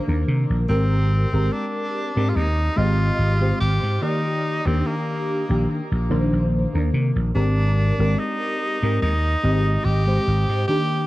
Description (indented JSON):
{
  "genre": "vaporwave",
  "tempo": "72 BPM",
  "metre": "4/4",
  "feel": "straight",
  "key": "unclear",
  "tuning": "A4 = 439 Hz",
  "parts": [
    { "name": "bright tenor saxophone", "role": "melody", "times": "0.0-11.1 s", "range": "Bb3 to G4", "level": "-26 LUFS", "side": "equal", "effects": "tape echo" },
    { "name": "mellow FM electric piano", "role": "accompaniment", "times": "0.0-11.1 s", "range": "Eb3 to Eb5", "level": "-24 LUFS", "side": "left 1 dB", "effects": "ensemble chorus, cassette tape" },
    { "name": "vintage slap bass", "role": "bass", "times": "0.1-10.6 s", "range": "Ab1 to C3", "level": "-20 LUFS", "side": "equal", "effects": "none" }
  ],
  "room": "light reverb",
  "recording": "cassette tape",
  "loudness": "-19 LUFS",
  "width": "side -17 dB against mid",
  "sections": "0.0-11.1 A section",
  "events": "none",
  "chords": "0.0 Ebmaj7(no3); 0.7 Abmaj9; 4.0 Ebmaj7; 7.4 Abmaj9"
}